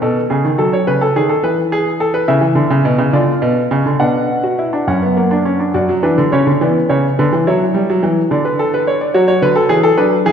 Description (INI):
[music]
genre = classical, baroque-style 3-part fugue for grand piano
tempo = 70 BPM (dotted quarters)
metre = 6/8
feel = straight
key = B minor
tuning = A4 = 441 Hz
[part]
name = clear baby grand piano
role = solo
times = 0.0-10.3 s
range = F#2 to F#5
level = -12 LUFS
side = equal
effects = none
[sound]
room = wet scoring stage reverb, RT60 1.8 s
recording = dark, warm production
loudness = -12 LUFS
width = side -7 dB against mid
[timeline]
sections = 0.0-5.7 A section; 5.7-10.3 B section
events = none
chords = 0.0 G#m; 0.6 F#m; 1.4 E; 2.3 Bsus24; 3.1 Bdim; 4.0 Bm; 4.9 F#; 5.7 Bm/F#; 6.6 C#m7; 7.5 F#5; 8.3 Bm/D; 9.1 F#m